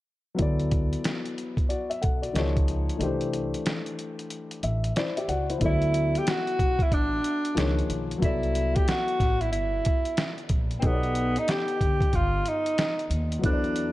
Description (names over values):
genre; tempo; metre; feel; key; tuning
hip hop, jazz-hop; 92 BPM; 4/4; swing 63% on 16ths; D mixolydian; A4 = 440 Hz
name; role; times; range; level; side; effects
dark upright piano; accompaniment; 0.3-13.9 s; D#3 to F#5; -31 LUFS; left 3 dB; none
upright bass; bass; 0.4-13.9 s; G1 to E2; -29 LUFS; equal; none
boom bap sampler-style drum kit; drums; 0.4-13.9 s; hi-hat, kick drum, snare drum; -27 LUFS; equal; none
breathy alto saxophone; melody; 5.7-13.9 s; B3 to G4; -27 LUFS; equal; slapback echo
room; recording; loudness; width
light reverb; dark, warm production; -24 LUFS; side -16 dB against mid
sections
0.4-5.6 A section; 5.6-13.9 B section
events
break 3.0-5.6; upright piano fill 4.3-5.6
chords
0.4 D69; 2.4 C#69; 3.0 C69; 5.6 D69; 7.6 C#69; 8.2 C69; 10.8 B7alt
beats
| 0.39 1.04 1.70 2.35 | 3.00 3.65 4.31 4.96 | 5.61 6.26 6.92 7.57 | 8.22 8.87 9.52 10.18 | 10.83 11.48 12.13 12.78 | 13.44